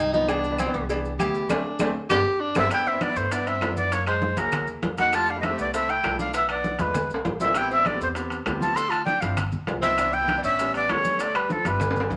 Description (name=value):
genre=Afro-Cuban jazz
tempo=198 BPM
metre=4/4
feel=straight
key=C major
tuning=A4 = 440 Hz
part: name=clear tenor saxophone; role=second line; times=0.0-12.1 s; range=F3 to A4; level=-31 LUFS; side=equal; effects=none
part: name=upright bass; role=bass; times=0.0-12.2 s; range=G1 to G2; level=-36 LUFS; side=equal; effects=none
part: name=clear baby grand piano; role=accompaniment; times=0.1-11.8 s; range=E3 to A4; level=-34 LUFS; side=equal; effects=none
part: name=congas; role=percussion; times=0.1-12.2 s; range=none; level=-35 LUFS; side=equal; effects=none
part: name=maracas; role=percussion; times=0.1-12.2 s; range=none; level=-47 LUFS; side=equal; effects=none
part: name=agogo bells and timbales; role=percussion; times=0.3-12.1 s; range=none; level=-34 LUFS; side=equal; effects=none
part: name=claves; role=percussion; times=0.3-12.0 s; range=none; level=-41 LUFS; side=equal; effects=none
part: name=cowbell and bongos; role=percussion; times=0.3-12.2 s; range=none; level=-40 LUFS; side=equal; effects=none
part: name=breathy bright jazz flute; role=melody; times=2.6-12.1 s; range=A4 to C6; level=-26 LUFS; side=equal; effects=none
room=moderate studio reverb, RT60 0.8 s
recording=none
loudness=-24 LUFS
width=mono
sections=0.0-2.7 A section; 2.7-12.2 B section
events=tenor saxophone solo 0.0-2.7; band accent 1.5-2.7; drum fill 1.9-2.7, 7.0-7.6, 11.8-12.2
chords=0.3 Cmaj7; 1.5 D5; 2.1 G; 2.7 Cmaj7; 3.9 F#9; 5.1 Fmaj7; 6.3 Bm7b5; 7.0 E7b9; 7.6 Am7; 8.8 Dm7; 9.4 G7alt; 10.0 Cmaj7; 10.6 A7; 11.2 Dm7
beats=| 0.29 0.59 0.89 1.19 | 1.50 1.80 2.10 2.40 | 2.71 3.01 3.31 3.61 | 3.92 4.22 4.52 4.83 | 5.13 5.43 5.74 6.04 | 6.34 6.65 6.95 7.25 | 7.56 7.86 8.16 8.47 | 8.77 9.08 9.38 9.68 | 9.99 10.29 10.60 10.90 | 11.20 11.51 11.81 12.11